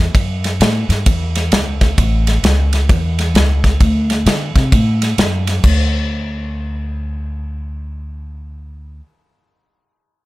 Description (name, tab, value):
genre	electric blues shuffle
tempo	131 BPM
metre	4/4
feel	swing 64% on 8ths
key	D major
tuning	A4 = 440 Hz
part	upright bass	bass	0.0-9.0 s	A1 to D3	-17 LUFS	equal	none
part	natural country drum kit	drums	0.1-5.8 s	crash cymbal, kick drum, ride cymbal, snare drum	-15 LUFS	equal	none
room	little or no reverb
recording	none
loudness	-13 LUFS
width	side -18 dB against mid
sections	0.0-5.6 A section; 5.6-9.3 B section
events	none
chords	none